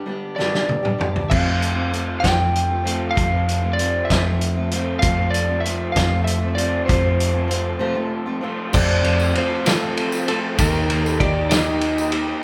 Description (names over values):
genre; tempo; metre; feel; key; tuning
folk rock and heartland rock; 65 BPM (dotted quarters); 6/8; straight; unclear; A4 = 441 Hz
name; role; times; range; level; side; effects
picked steel-string acoustic guitar; accompaniment; 0.0-12.4 s; F2 to G4; -29 LUFS; equal; none
raw garage guitar; riff; 0.0-12.4 s; F2 to G4; -30 LUFS; equal; overdrive, spring reverb
electric slide guitar; melody; 0.4-12.2 s; A4 to G5; -26 LUFS; equal; none
loose indie drum kit; drums; 0.4-12.3 s; crash cymbal, hi-hat, kick drum, ride cymbal, snare drum, toms; -24 LUFS; equal; none
picked electric bass; bass; 1.3-12.3 s; Eb2 to F2; -25 LUFS; equal; none
tonewheel organ; sustained chords; 5.0-12.4 s; Eb4 to Bb5; -37 LUFS; equal; none
tambourine; percussion; 8.7-12.1 s; none; -39 LUFS; equal; none
room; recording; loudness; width
moderate large studio reverb, RT60 1.3 s; band playing live in one room; -20 LUFS; mono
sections
0.0-1.3 A section; 1.3-8.7 B section; 8.7-12.4 C section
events
break 0.0-1.3, 7.8-8.7; drum fill 0.4-1.3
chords
0.0 G; 1.3 F; 10.6 Eb